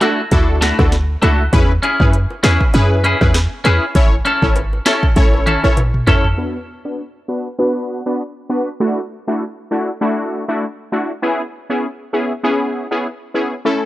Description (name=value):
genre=dancehall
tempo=99 BPM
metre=4/4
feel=swing 56% on 16ths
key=unclear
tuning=A4 = 442 Hz
part: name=synth brass stab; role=accompaniment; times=0.0-13.8 s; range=A3 to C#5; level=-18 LUFS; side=equal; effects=chorus, low-pass filter
part: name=clean electric guitar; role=arpeggios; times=0.0-6.3 s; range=A3 to A4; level=-19 LUFS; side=left 1 dB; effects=spring reverb
part: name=afro-pop drum kit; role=drums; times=0.0-6.4 s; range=hi-hat, kick drum, rim click, snare drum, toms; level=-17 LUFS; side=equal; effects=none
part: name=bongos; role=percussion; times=0.0-6.2 s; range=none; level=-29 LUFS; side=equal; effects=none
part: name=short 808-style bass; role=bass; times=0.3-6.3 s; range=G#1 to F#2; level=-15 LUFS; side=equal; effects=none
room=digital ambience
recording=dry, gritty hardware recording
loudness=-14 LUFS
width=side -16 dB against mid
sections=0.0-6.4 A section; 6.4-13.9 B section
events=drum fill 5.2-6.4; filter sweep on synth stab 6.4-13.9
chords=0.0 Dadd9; 1.5 E6; 4.0 A; 6.4 Bm; 8.8 Dadd9; 11.2 E6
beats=0.32 0.92 | 1.53 2.13 2.74 3.35 | 3.95 4.56 5.17 5.77 | 6.38 6.98 7.59 8.20 | 8.80 9.41 10.01 10.62 | 11.23 11.83 12.44 13.04 | 13.65